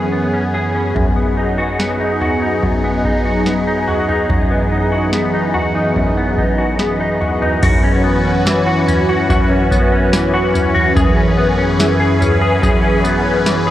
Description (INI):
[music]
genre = dream pop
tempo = 72 BPM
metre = 4/4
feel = straight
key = unclear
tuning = A4 = 440 Hz
[part]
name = phased analog pad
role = sustained chords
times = 0.0-13.7 s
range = F#2 to B4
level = -17 LUFS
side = equal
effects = phaser, chorus, shimmer reverb
[part]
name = semi-hollow electric guitar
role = arpeggios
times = 0.0-13.7 s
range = F#2 to G#4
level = -16 LUFS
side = left 1 dB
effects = ensemble chorus, ping-pong delay, shimmer reverb
[part]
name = booming analog drum machine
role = drums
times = 1.0-13.7 s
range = crash cymbal, kick drum, snare drum, tambourine, toms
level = -19 LUFS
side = equal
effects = none
[sound]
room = moderate huge ambient reverb, RT60 6.8 s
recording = worn, warbling old tape, cassette tape, warbly pitch drift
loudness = -13 LUFS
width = side -13 dB against mid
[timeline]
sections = 0.0-7.6 A section; 7.6-13.7 B section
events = none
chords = 0.0 C#m7/F#; 1.0 B6/F#; 4.3 Emaj7/F#; 7.6 F#7sus4; 11.0 C#m7/F#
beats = 0.13 | 0.96 1.80 2.63 3.46 | 4.30 5.13 5.96 6.80 | 7.63 8.46 9.30 10.13 | 10.96 11.80 12.63 13.46